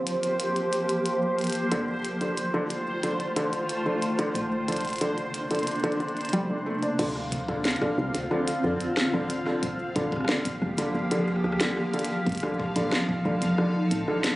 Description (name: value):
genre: IDM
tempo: 91 BPM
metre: 4/4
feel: straight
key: D minor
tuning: A4 = 441 Hz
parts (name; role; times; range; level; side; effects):
- granular cloud pad; sustained chords; 0.0-14.4 s; C3 to A4; -29 LUFS; equal; built-in reverb
- woody FM bass; bass; 0.0-14.1 s; D1 to F2; -32 LUFS; equal; none
- bubbling stepped-filter texture; texture; 0.0-14.4 s; C5 to F5; -32 LUFS; right 1 dB; chorus, built-in reverb
- glitchy drum kit; drums; 0.1-14.4 s; crash cymbal, hi-hat, rim click, snare drum; -31 LUFS; equal; overdrive, small room ambience, digital delay
- felt-muted upright piano; arpeggios; 1.7-14.2 s; D3 to D4; -29 LUFS; equal; tape echo
- electronic kick drum; drums; 7.0-13.2 s; none; -34 LUFS; equal; small room ambience
room: moderate echo chamber reverb, RT60 1.8 s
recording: recorded on a phone in the room, club reverb, compression, nothing above 11.0 kHz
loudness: -24 LUFS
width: side -18 dB against mid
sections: 0.0-7.0 A section; 7.0-14.4 B section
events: none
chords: 0.0 Gm7; 1.7 F7; 4.4 Bbadd9; 7.0 Dm7; 9.6 Gm7; 12.3 F7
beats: 0.40 1.06 | 1.72 2.38 3.03 3.69 | 4.35 5.01 5.67 6.33 | 6.99 7.65 8.31 8.97 | 9.63 10.29 10.95 11.61 | 12.27 12.93 13.58 14.24